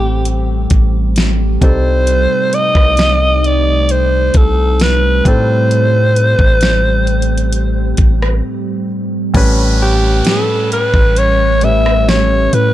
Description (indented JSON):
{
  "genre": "contemporary R&B",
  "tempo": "66 BPM",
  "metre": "4/4",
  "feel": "straight",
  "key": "unclear",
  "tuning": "A4 = 436 Hz",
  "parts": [
    { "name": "growling alto saxophone", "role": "melody", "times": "0.0-12.7 s", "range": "G4 to E5", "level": "-14 LUFS", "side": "equal", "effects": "digital delay" },
    { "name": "warm concert grand piano", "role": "accompaniment", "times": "0.0-12.7 s", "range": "A2 to B4", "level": "-20 LUFS", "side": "left 1 dB", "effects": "none" },
    { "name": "deep dark ambient pad", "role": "sustained chords", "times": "0.0-12.7 s", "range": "C3 to Eb4", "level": "-21 LUFS", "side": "equal", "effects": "chorus, built-in reverb" },
    { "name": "long sustained 808-style bass", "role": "bass", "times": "0.0-12.7 s", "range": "A1 to A2", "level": "-14 LUFS", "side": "equal", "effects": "none" },
    { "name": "smooth R&B drum kit", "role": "drums", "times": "0.3-12.7 s", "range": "hi-hat, kick drum, rim click, snare drum", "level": "-14 LUFS", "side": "equal", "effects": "vintage 12-bit sampler grit" },
    { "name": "downlifter", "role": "sound effects", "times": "9.3-12.7 s", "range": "none", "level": "-24 LUFS", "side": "right 3 dB", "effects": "none" }
  ],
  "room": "little or no reverb",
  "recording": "none",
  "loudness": "-10 LUFS",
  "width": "side -14 dB against mid",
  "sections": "0.0-9.3 A section; 9.3-12.7 B section",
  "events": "break 8.4-9.3",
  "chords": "0.0 Am7; 1.6 Cm6; 5.3 Am7; 9.3 A9",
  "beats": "0.25 1.16 | 2.07 2.98 3.89 4.80 | 5.71 6.62 7.53 8.44 | 9.34 10.25 11.16 12.07"
}